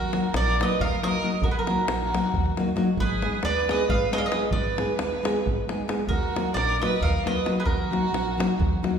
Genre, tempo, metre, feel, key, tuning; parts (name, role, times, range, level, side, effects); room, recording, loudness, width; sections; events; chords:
balkan folk, Balkan wedding band; 270 BPM (eighths); 7/8; straight; Eb harmonic minor; A4 = 441 Hz
mandolin; melody; 0.0-9.0 s; Bb4 to F5; -29 LUFS; right 1 dB
rich violin; second line; 0.0-9.0 s; Gb4 to D5; -30 LUFS; right 4 dB
upright bass; bass; 0.0-8.7 s; Ab1 to Eb2; -30 LUFS; equal
davul; percussion; 0.0-8.9 s; -29 LUFS; equal
nylon-string guitar; accompaniment; 0.1-9.0 s; Gb3 to Ab4; -27 LUFS; left 2 dB
wet recital hall reverb, RT60 1.7 s; recorded in a church or concert hall; -22 LUFS; side -7 dB against mid
0.0-9.0 A section
0.0 Ebm; 3.0 Abm; 6.1 Ebm